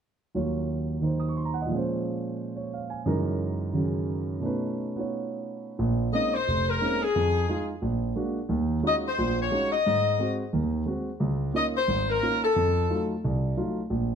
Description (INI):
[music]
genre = jazz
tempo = 177 BPM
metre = 4/4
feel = swing 62% on 8ths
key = Bb minor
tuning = A4 = 440 Hz
[part]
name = dark concert grand piano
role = accompaniment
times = 0.3-14.2 s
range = F1 to Eb6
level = -26 LUFS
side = right 2 dB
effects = none
[part]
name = bright saxophone section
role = melody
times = 6.1-13.1 s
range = Ab4 to Eb5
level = -25 LUFS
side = left 4 dB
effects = none
[sound]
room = moderate large studio reverb, RT60 1.1 s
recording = dark, warm production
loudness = -25 LUFS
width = side -7 dB against mid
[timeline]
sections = 0.3-5.8 A section; 5.8-14.2 B section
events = none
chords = 0.3 Ebm7; 1.7 Bbm7; 3.1 Gb13; 4.4 B9; 5.8 Bbm11; 7.1 Fm7; 7.8 Bb7b13; 8.5 Ebm11; 9.8 Ab7; 11.2 Db69; 12.6 F7b9